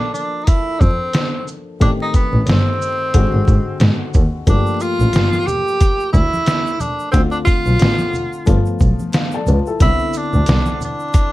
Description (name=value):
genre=hip hop, jazz-hop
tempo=90 BPM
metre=4/4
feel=swing 58% on 16ths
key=unclear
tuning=A4 = 440 Hz
part: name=clear tenor saxophone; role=melody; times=0.0-11.3 s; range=B3 to G4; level=-20 LUFS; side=right 1 dB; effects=none
part: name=dark upright piano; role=accompaniment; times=0.0-11.3 s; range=D3 to A5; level=-25 LUFS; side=left 5 dB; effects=none
part: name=lo-fi sampler-style drum kit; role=drums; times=0.1-11.3 s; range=hi-hat, kick drum, shaker, snare drum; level=-16 LUFS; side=equal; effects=none
part: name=warm double bass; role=bass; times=0.8-10.6 s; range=G1 to G#2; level=-17 LUFS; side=equal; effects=none
part: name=tube shaker and congas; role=percussion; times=4.5-11.3 s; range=none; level=-28 LUFS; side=right 1 dB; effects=none
room=little or no reverb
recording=dark, warm production, vinyl crackle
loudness=-14 LUFS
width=side -17 dB against mid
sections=0.0-11.3 A section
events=upright piano fill 8.8-9.8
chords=0.0 Bbmaj7; 1.8 Am7b5; 3.1 G#7#11; 4.5 Gm9; 7.1 Dm7; 8.5 G9 (rootless); 9.8 Cmaj9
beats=0.47 1.14 | 1.81 2.47 3.14 3.81 | 4.47 5.14 5.81 6.47 | 7.14 7.81 8.47 9.14 | 9.81 10.47 11.14